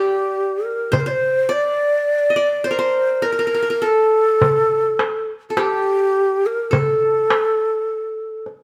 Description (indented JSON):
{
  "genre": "Arabic maqam ensemble",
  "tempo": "104 BPM (eighths)",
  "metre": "10/8",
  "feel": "straight",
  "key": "unclear",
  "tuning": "A4 = 439 Hz",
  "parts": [
    { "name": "breathy mellow ney", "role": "melody", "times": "0.0-8.5 s", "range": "G4 to D5", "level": "-20 LUFS", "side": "equal", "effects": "none" },
    { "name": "qanun", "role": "second line", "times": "0.0-8.4 s", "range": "G4 to Eb5+25c", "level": "-27 LUFS", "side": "equal", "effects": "none" },
    { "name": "darbuka", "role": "percussion", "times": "0.9-8.6 s", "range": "none", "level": "-24 LUFS", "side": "equal", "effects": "none" }
  ],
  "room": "moderate stone room reverb, RT60 1.2 s",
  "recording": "band playing live in one room",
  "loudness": "-18 LUFS",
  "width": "mono",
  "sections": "0.9-8.6 A section",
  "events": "none",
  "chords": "none",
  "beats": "0.35 | 0.93 1.51 2.09 2.67 3.25 3.83 4.41 4.99 5.57 6.14 | 6.72 7.30 7.88 8.46"
}